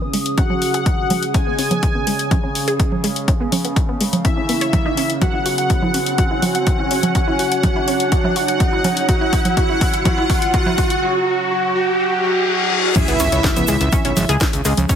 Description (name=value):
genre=melodic techno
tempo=124 BPM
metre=4/4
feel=straight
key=C# minor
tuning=A4 = 440 Hz
part: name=analog pluck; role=arpeggios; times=0.0-15.0 s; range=G#3 to C#6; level=-25 LUFS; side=equal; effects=chorus, sidechain pumping, ping-pong delay
part: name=analog drone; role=drone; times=0.0-15.0 s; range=C#3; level=-31 LUFS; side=equal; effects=chorus, sidechain pumping
part: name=riser, reverse cymbal and impact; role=sound effects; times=1.6-14.9 s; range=none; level=-25 LUFS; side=left 1 dB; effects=none
part: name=warbly tape-like pad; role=texture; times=0.0-11.0 s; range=C#4 to D#6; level=-27 LUFS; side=right 2 dB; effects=chorus, built-in reverb, sidechain pumping
part: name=house drum kit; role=drums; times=0.1-15.0 s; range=congas, crash cymbal, hi-hat, snare drum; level=-22 LUFS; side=equal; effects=overdrive
part: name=fat analog lead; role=melody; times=0.4-14.3 s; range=E4 to G#4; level=-22 LUFS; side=right 1 dB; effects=analog chorus, sidechain pumping, digital delay
part: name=big bright polysynth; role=second line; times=0.4-14.3 s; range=E5 to G#5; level=-24 LUFS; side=equal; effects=analog chorus, sidechain pumping, ping-pong delay
part: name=electronic kick drum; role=drums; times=0.4-15.0 s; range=none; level=-18 LUFS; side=equal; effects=none
part: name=egg shaker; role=percussion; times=13.0-15.0 s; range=none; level=-29 LUFS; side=right 3 dB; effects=none
part: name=fat analog bass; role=bass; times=13.1-14.9 s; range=G#1 to C#2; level=-19 LUFS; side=equal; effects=sidechain pumping
room=moderate lush hall reverb, RT60 2.3 s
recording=heavily compressed radio sound, multiband compression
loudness=-15 LUFS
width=side -8 dB against mid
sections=0.0-13.0 A section; 13.0-15.0 B section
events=build-up 0.0-13.0; filter sweep on synth arpeggio sound 0.0-13.0; filter sweep on analog synth lead 0.0-13.0; riser 1.6-13.0; drum fill 5.2-11.0; reverse cymbal 12.0-13.0; drop 13.0-15.0; impact 13.0-14.9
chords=0.0 C#m; 5.2 F#5/C#; 13.0 C#m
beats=0.38 0.86 | 1.34 1.83 2.31 2.80 | 3.28 3.76 4.25 4.73 | 5.22 5.70 6.18 6.67 | 7.15 7.63 8.12 8.60 | 9.09 9.57 10.05 10.54 | 11.02 11.51 11.99 12.47 | 12.96 13.44 13.93 14.41 | 14.89